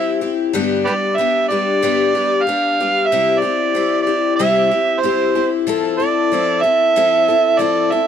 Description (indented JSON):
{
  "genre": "rock",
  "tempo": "93 BPM",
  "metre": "4/4",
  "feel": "straight",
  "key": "unclear",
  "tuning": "A4 = 440 Hz",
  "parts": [
    { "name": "overdriven harmonica", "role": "melody", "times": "0.0-8.1 s", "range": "G4 to F5", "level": "-16 LUFS", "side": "right 3 dB", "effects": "none" },
    { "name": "picked twelve-string acoustic guitar", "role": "accompaniment", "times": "0.0-8.1 s", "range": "G2 to A4", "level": "-18 LUFS", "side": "left 6 dB", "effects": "none" }
  ],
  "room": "light reverb",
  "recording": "dark, warm production",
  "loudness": "-14 LUFS",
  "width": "side -8 dB against mid",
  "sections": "0.0-8.1 A section",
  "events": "none",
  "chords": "0.0 C; 0.5 G; 3.1 C; 5.7 Fmaj7"
}